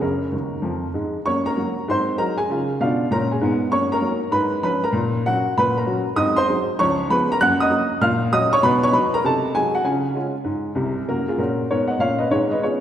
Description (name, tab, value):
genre	jazz, stride piano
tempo	196 BPM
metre	4/4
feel	swing 65% on 8ths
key	F# major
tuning	A4 = 440 Hz
part	warm upright piano	solo	0.0-12.8 s	F#1 to F#6	-18 LUFS	equal	none
room	wet concert hall reverb, RT60 1.9 s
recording	recorded in a church or concert hall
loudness	-18 LUFS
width	side -10 dB against mid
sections	0.0-1.3 A section; 1.3-11.1 B section; 11.1-12.8 A section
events	upright piano fill 0.3-1.3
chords	0.0 F#; 1.9 G#7; 2.5 C#7b9; 3.7 F#; 4.3 C#7/G#; 4.9 F#/A#; 6.2 G#7; 6.8 C#7; 7.4 F#; 8.0 F#/A#; 8.6 B; 9.2 Cdim7; 9.8 C#; 11.1 F#; 12.3 C#7/G#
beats	| 0.03 0.33 0.64 0.95 | 1.26 1.56 1.87 2.18 | 2.48 2.79 3.10 3.40 | 3.71 4.02 4.33 4.63 | 4.94 5.25 5.55 5.86 | 6.17 6.47 6.78 7.09 | 7.39 7.70 8.01 8.31 | 8.62 8.93 9.23 9.54 | 9.85 10.15 10.46 10.77 | 11.07 11.38 11.69 12.00 | 12.30 12.61